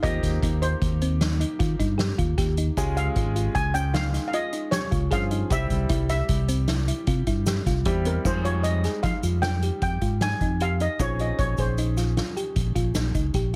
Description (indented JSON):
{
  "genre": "progressive instrumental, band music in an uneven meter",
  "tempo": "153 BPM",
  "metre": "7/4",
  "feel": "straight",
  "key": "F minor",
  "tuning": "A4 = 440 Hz",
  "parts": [
    { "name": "steel pan", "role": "melody", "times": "0.0-12.3 s", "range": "Bb4 to Ab5", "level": "-32 LUFS", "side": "equal", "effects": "plate reverb" },
    { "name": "bright concert grand piano", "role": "accompaniment", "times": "0.0-13.6 s", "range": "F3 to Ab4", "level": "-37 LUFS", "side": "equal", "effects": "none" },
    { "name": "thumb-piano-like synth pluck", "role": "arpeggios", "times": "0.0-13.5 s", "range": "C4 to Ab4", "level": "-34 LUFS", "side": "equal", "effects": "chorus, digital delay" },
    { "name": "fingered electric bass", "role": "bass", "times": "0.0-13.6 s", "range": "Ab1 to F3", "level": "-27 LUFS", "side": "equal", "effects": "none" },
    { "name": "soft-mallet drum kit", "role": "drums", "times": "0.0-13.4 s", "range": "crash cymbal, hi-hat, kick drum, snare drum", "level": "-30 LUFS", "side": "equal", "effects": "none" },
    { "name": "egg shaker", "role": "percussion", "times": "2.8-13.1 s", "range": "none", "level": "-43 LUFS", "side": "equal", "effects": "none" }
  ],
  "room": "little or no reverb",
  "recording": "heavily compressed radio sound, multiband compression",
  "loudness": "-25 LUFS",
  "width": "mono",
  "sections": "0.0-8.3 A section; 8.3-13.6 B section",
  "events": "none",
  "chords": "0.0 Cm7/Eb; 2.8 Db; 5.5 C; 8.3 Fm9; 11.0 Bbm11"
}